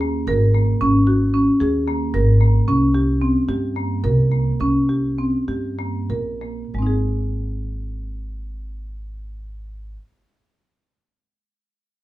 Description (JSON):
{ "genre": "contemporary instrumental, chamber music in an uneven meter", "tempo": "181-225 BPM (eighths)", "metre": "7/8", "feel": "straight", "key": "Ab major", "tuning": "A4 = 440 Hz", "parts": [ { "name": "marimba with medium hard mallets", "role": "arpeggios", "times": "0.0-10.1 s", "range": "Ab3 to Bb4", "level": "-20 LUFS", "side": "equal", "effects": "none" }, { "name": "upright bass", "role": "bass", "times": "0.0-10.0 s", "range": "Ab1 to G2", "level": "-21 LUFS", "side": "equal", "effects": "none" } ], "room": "wet studio ambience, RT60 0.5 s", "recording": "heard from further back in the room", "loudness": "-17 LUFS", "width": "side -17 dB against mid", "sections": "0.0-6.7 A section; 6.7-11.4 B section", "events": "slowing down 2.7-6.7", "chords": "0.0 Absus2; 2.7 C5; 6.7 Ab" }